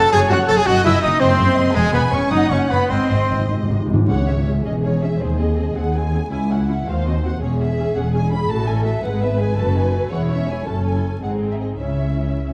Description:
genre	quick classical-period movement for symphony orchestra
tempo	108 BPM (dotted quarters)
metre	6/8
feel	rubato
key	C# minor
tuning	A4 = 442 Hz
part	dark studio violin section	melody	0.0-12.4 s	B#4 to A6	-31 LUFS	equal	none
part	mellow clarinet	second line	0.0-3.5 s	G#4 to A5	-26 LUFS	equal	none
part	warm oboe	second line	0.0-3.5 s	G#4 to A5	-26 LUFS	equal	none
part	warm studio violin section	second line	0.0-12.5 s	E4 to A5	-29 LUFS	equal	none
part	dark studio viola section	accompaniment	0.0-12.5 s	G#3 to B4	-28 LUFS	equal	none
part	warm French horn section	sustained chords	0.0-3.5 s	G#3 to A4	-26 LUFS	equal	none
part	brilliant trumpet	stabs	0.0-3.5 s	G#3 to A4	-25 LUFS	equal	none
part	dark studio cello section	bass	0.0-12.5 s	C#2 to C#3	-25 LUFS	equal	none
part	dark studio double bass section	bass	0.0-12.5 s	E1 to D#2	-25 LUFS	equal	none
part	timpani	percussion	2.9-4.6 s	G#2 to C#3	-24 LUFS	equal	none
room	wet scoring stage reverb, RT60 1.5 s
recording	vinyl crackle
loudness	-19 LUFS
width	mono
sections	0.0-4.1 A section; 4.1-12.5 B section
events	timpani fill 2.9-4.1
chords	0.0 Cdim/Gb; 1.8 E6; 2.3 Badd9; 2.9 G#; 4.1 C#m; 4.6 C#m/E; 5.2 G#/D#; 6.3 C#m; 6.9 Cdim/Eb; 7.4 C#m/E; 8.5 F#m/A; 9.0 G#m7; 9.6 D#dim/F#; 10.1 C#m/E; 10.7 F#m; 11.2 G#; 11.8 C#m

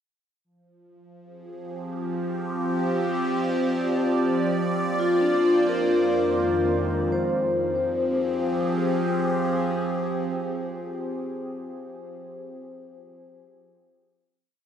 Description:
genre	ambient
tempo	free time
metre	none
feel	none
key	F dorian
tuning	A4 = 440 Hz
part	evolving wavetable pad	sustained chords	1.5-11.2 s	F2 to D5	-25 LUFS	right 1 dB	phaser, built-in reverb
part	vibraphone with medium hard mallets	arpeggios	5.0-13.0 s	D4 to C5	-25 LUFS	left 2 dB	tape echo
room	wet concert hall reverb, RT60 2.4 s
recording	dark, warm production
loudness	-22 LUFS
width	side -8 dB against mid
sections	0.5-7.1 A section; 7.1-10.5 final chord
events	none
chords	0.5 Fm; 2.1 Cm/F; 3.8 Bb/F; 5.5 Ab/F; 7.1 Fm

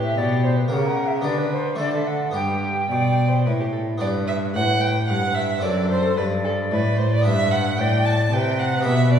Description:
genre	classical, baroque-style sonata movement with continuo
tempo	112 BPM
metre	3/4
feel	straight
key	G major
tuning	A4 = 440 Hz
part	mellow alto recorder	melody	0.0-9.2 s	A4 to G5	-26 LUFS	left 2 dB	none
part	rich violin	second line	0.0-9.2 s	G4 to A5	-25 LUFS	right 3 dB	none
part	harpsichord	accompaniment	0.0-9.2 s	F#2 to B4	-28 LUFS	left 1 dB	none
part	clear cello	bass	0.0-9.2 s	F#2 to D3	-22 LUFS	equal	none
room	wet recital hall reverb, RT60 1.8 s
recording	heard from further back in the room, studio ambience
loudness	-19 LUFS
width	side -8 dB against mid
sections	0.0-4.0 A section; 4.0-9.2 B section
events	none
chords	0.0 C; 0.7 F#7b9/C#; 1.2 G/D; 1.8 D; 2.4 G; 5.6 D7/F#; 7.3 G

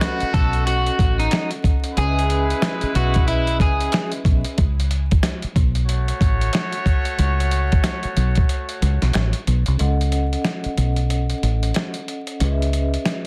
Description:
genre	hip hop, boom-bap hip-hop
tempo	92 BPM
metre	4/4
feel	swing 62% on 16ths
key	unclear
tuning	A4 = 439 Hz
part	electric guitar at the edge of break-up	melody	0.0-4.1 s	D#4 to B4	-26 LUFS	equal	high-pass filter, low-pass filter, tape echo
part	vibraphone with soft mallets	accompaniment	0.0-4.6, 9.8-13.3 s	C#4 to F#5	-30 LUFS	equal	cassette tape, high-pass filter, low-pass filter
part	bright trumpet section	stabs	0.0-9.4 s	G#3 to C#5	-30 LUFS	equal	high-pass filter, low-pass filter, tape echo
part	dusty soul sampler-style drum kit	drums	0.0-13.3 s	hi-hat, kick drum, snare drum	-24 LUFS	equal	none
part	finger snap	percussion	0.0-9.3 s	none	-37 LUFS	equal	none
part	deep dub fingered electric bass	bass	0.2-13.0 s	A1 to C#2	-22 LUFS	equal	none
room	little or no reverb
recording	dense, heavily limited modern master, vinyl crackle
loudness	-20 LUFS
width	mono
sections	0.0-9.8 A section; 9.8-13.3 B section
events	kick muted 8.5-9.8, 9.8-13.3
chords	0.0 D#dim; 2.0 C#m7; 4.6 F#m; 9.8 D#dim; 12.4 C#m7

